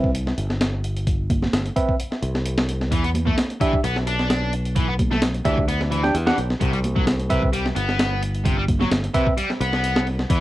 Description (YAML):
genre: breakbeat, breaks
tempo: 130 BPM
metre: 4/4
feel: swing 53% on 16ths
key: unclear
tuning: A4 = 438 Hz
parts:
  - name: bell-like tine electric piano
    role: stabs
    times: 0.0-9.3 s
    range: C4 to G5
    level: -24 LUFS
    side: right 2 dB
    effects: low-pass filter, cassette tape, analog delay
  - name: modern bright fingered electric bass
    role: bass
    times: 0.0-10.4 s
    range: G1 to E2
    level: -24 LUFS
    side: equal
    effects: none
  - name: breakbeat sampler-style drum kit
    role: drums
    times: 0.0-10.4 s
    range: hi-hat, kick drum, snare drum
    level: -23 LUFS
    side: equal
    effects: none
  - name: congas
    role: percussion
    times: 1.3-8.9 s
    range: none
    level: -28 LUFS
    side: right 2 dB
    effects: none
  - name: distorted electric guitar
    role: riff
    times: 2.9-10.4 s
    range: C3 to D4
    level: -26 LUFS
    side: left 1 dB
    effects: overdrive, cassette tape, analog delay
room: light reverb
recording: home recording on cassette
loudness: -19 LUFS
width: side -16 dB against mid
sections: 0.0-10.4 A section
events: filter sweep on tine electric piano 0.0-10.4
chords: 0.0 C5; 2.9 Em7; 6.6 Cmaj7(no3)